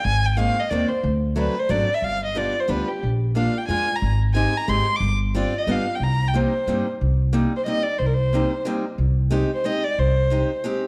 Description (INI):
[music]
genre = musette waltz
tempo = 181 BPM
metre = 3/4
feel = swing 54% on 8ths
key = C minor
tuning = A4 = 440 Hz
[part]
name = dark violin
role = melody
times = 0.0-10.7 s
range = G4 to D6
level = -26 LUFS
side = equal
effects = none
[part]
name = upright bass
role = bass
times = 0.0-10.4 s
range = G1 to G2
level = -25 LUFS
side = equal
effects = none
[part]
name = picked steel-string acoustic guitar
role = accompaniment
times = 0.4-10.8 s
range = Eb3 to G4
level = -28 LUFS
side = equal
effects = none
[sound]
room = moderate recital hall reverb, RT60 1.5 s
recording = dark, warm production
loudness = -22 LUFS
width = mono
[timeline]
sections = 0.0-7.0 A section; 7.0-10.9 B section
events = none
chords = 0.1 Abadd9; 1.0 D7; 2.0 G7; 3.0 Bb7; 4.0 Abmaj7; 5.0 G7sus4; 5.7 G7; 6.0 Cm7; 9.0 Abmaj7/C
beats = | 0.05 0.38 0.71 | 1.04 1.37 1.70 | 2.03 2.36 2.69 | 3.03 3.36 3.69 | 4.03 4.35 4.68 | 5.01 5.34 5.67 | 6.00 6.34 6.67 | 7.01 7.34 7.67 | 8.00 8.33 8.66 | 8.99 9.32 9.65 | 9.99 10.32 10.65